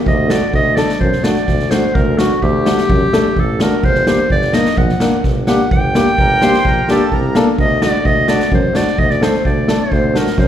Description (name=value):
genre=klezmer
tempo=128 BPM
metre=4/4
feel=straight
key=D phrygian dominant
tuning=A4 = 441 Hz
part: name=clear clarinet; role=melody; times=0.1-10.5 s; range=F#4 to G5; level=-18 LUFS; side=right 1 dB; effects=slapback echo
part: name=warm tuba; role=bass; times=0.1-10.5 s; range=G1 to F#2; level=-18 LUFS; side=equal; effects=none
part: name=street-band drum kit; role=drums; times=0.1-10.5 s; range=kick drum, snare drum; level=-17 LUFS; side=equal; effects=none
part: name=warm upright piano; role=accompaniment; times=0.3-10.3 s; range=A3 to Bb4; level=-17 LUFS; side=left 2 dB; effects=slapback echo
part: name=accordion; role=second line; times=6.2-7.5 s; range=A4 to C5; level=-22 LUFS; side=right 4 dB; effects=slapback echo
room=light reverb, small room ambience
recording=live gig heard through the venue's PA, club reverb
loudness=-12 LUFS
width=side -10 dB against mid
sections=0.0-10.5 A section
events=none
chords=0.1 D; 3.8 Gm; 7.6 D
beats=| 0.06 0.53 1.01 1.48 | 1.95 2.42 2.89 3.37 | 3.84 4.31 4.78 5.25 | 5.72 6.18 6.65 7.12 | 7.59 8.05 8.52 8.99 | 9.45 9.92 10.38